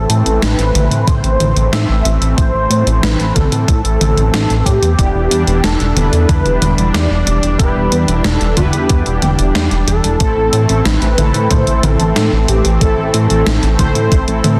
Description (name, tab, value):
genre	synthwave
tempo	92 BPM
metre	4/4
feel	straight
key	unclear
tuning	A4 = 439 Hz
part	unison lead	melody	0.0-14.6 s	G4 to E5	-21 LUFS	equal	ensemble chorus, digital delay
part	lush unison pad	sustained chords	0.0-14.6 s	E3 to D4	-24 LUFS	equal	chorus, phaser, sidechain pumping
part	chorused synth bass	bass	0.0-14.6 s	E1 to A2	-17 LUFS	equal	tube saturation, sidechain pumping
part	gated 80s digital drum machine	drums	0.1-14.6 s	hi-hat, snare drum, toms	-20 LUFS	equal	gated reverb, gated reverb snare, studio ambience
part	electronic kick drum	drums	1.1-14.2 s	none	-16 LUFS	equal	studio ambience
part	mellow synth brass	stabs	5.0-14.6 s	A3 to C5	-24 LUFS	equal	chorus, tape echo
room	light reverb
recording	dense, heavily limited modern master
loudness	-13 LUFS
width	mono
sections	0.0-14.6 A section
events	none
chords	0.0 Am; 5.0 Em7; 10.2 Am